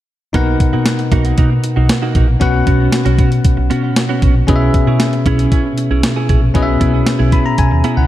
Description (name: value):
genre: 1980s-style pop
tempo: 116 BPM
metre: 4/4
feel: straight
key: B major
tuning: A4 = 442 Hz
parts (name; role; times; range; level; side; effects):
- bell-like tine electric piano; accompaniment; 0.3-8.1 s; B2 to B5; -15 LUFS; left 2 dB; none
- direct-recorded clean electric guitar; riff; 0.3-8.1 s; A#3 to G#4; -21 LUFS; right 6 dB; analog chorus, digital delay
- vintage muted fingered electric bass; bass; 0.3-8.1 s; A#1 to B2; -16 LUFS; equal; none
- clean 12-bit digital drum machine; drums; 0.3-8.0 s; hi-hat, kick drum, snare drum; -15 LUFS; equal; none
room: light reverb, digital ambience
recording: dark, warm production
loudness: -11 LUFS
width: side -14 dB against mid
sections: 0.3-8.1 A section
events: tine electric piano fill 7.1-8.1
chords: 0.3 Bmaj7; 2.4 F#sus4/B; 4.5 E6/B; 6.5 C#m7/B